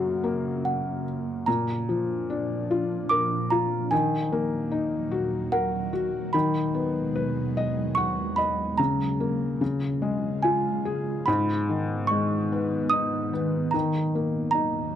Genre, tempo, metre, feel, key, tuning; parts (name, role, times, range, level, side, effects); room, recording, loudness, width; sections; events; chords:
children's music, lullaby; 73 BPM; 3/4; straight; A4 = 440 Hz
small celesta; melody; 0.0-15.0 s; F#5 to D#6; -27 LUFS; right 4 dB
felt-muted upright piano; accompaniment; 0.0-15.0 s; F#2 to F#5; -26 LUFS; left 3 dB
ethereal airy pad; sustained chords; 0.0-15.0 s; D#2 to E#4; -31 LUFS; right 2 dB; ensemble chorus, built-in reverb
light reverb; dry, close 1970s-style studio recording; -24 LUFS; side -10 dB against mid
0.0-1.5 A section; 1.5-15.0 B section
0.0 F#; 1.5 A#; 3.9 D#m; 6.3 G#m7/D#; 8.8 F#/C#; 9.6 C#; 11.3 G#m; 13.7 D#m